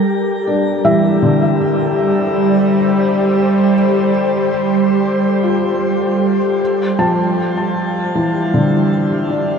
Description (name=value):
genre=ambient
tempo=78 BPM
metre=4/4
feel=straight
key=G dorian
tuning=A4 = 442 Hz
part: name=ethereal airy pad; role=sustained chords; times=0.0-9.6 s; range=G3 to C5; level=-15 LUFS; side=equal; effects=ensemble chorus, built-in reverb
part: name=felt-muted upright piano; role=arpeggios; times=0.5-9.6 s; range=D3 to A5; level=-18 LUFS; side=left 2 dB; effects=ping-pong delay
part: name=bowed-like drone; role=drone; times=1.5-6.7 s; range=G3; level=-21 LUFS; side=right 1 dB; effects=built-in reverb
room=wet shimmer reverb, RT60 8.3 s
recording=cassette tape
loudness=-13 LUFS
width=side -6 dB against mid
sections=0.0-6.6 A section; 6.6-9.6 B section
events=filter sweep on ambient pad 0.0-6.6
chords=0.0 Gm7